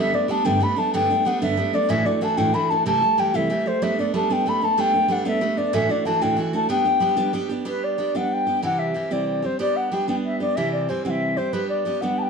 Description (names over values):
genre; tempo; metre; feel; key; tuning
celtic folk; 125 BPM (dotted quarters); 6/8; straight; G major; A4 = 441 Hz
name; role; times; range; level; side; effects
mellow wooden flute; melody; 0.0-12.3 s; B4 to B5; -22 LUFS; left 2 dB; slapback echo
picked steel-string acoustic guitar; accompaniment; 0.0-12.3 s; D2 to G4; -23 LUFS; right 3 dB; none
room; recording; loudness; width
moderate studio reverb, RT60 0.6 s; dark, warm production; -19 LUFS; side -5 dB against mid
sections
0.0-7.7 A section; 7.7-12.3 B section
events
none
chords
0.0 Gadd9; 1.9 Dadd9; 2.9 C6; 3.8 Gadd9; 5.7 Dadd9; 6.7 G; 8.6 C; 9.6 G; 10.6 C; 11.5 G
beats
0.45 | 0.93 1.41 | 1.89 2.37 | 2.85 3.33 | 3.81 4.30 | 4.78 5.26 | 5.74 6.22 | 6.70 7.18 | 7.67 8.15 | 8.63 9.11 | 9.60 10.08 | 10.56 11.05 | 11.53 12.01